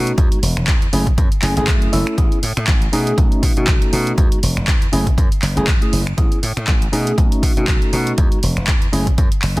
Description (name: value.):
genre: filtered disco house.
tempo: 120 BPM.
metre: 4/4.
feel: swing 56% on 16ths.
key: F# dorian.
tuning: A4 = 440 Hz.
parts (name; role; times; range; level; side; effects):
mellow tine electric piano; accompaniment; 0.0-9.6 s; G#3 to A4; -21 LUFS; equal; phaser, sidechain pumping.
slap bass; bass; 0.0-9.6 s; E1 to B2; -21 LUFS; equal; sidechain pumping.
punchy analog drum machine; drums; 0.1-9.6 s; finger snaps, handclaps, hi-hat; -23 LUFS; right 1 dB; sidechain pumping on hats, soft clipping on snare.
electronic kick drum; drums; 0.2-9.3 s; none; -16 LUFS; equal; none.
room: digital ambience.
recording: dense, heavily limited modern master.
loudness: -14 LUFS.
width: side -21 dB against mid.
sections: 0.0-9.6 A section.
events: none.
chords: 0.2 Emaj9; 0.9 F#m9; 2.2 Amaj9; 2.9 B9; 4.2 Emaj9; 4.9 F#m9; 6.2 Amaj9; 6.9 B9; 8.2 Emaj9; 8.9 F#m9.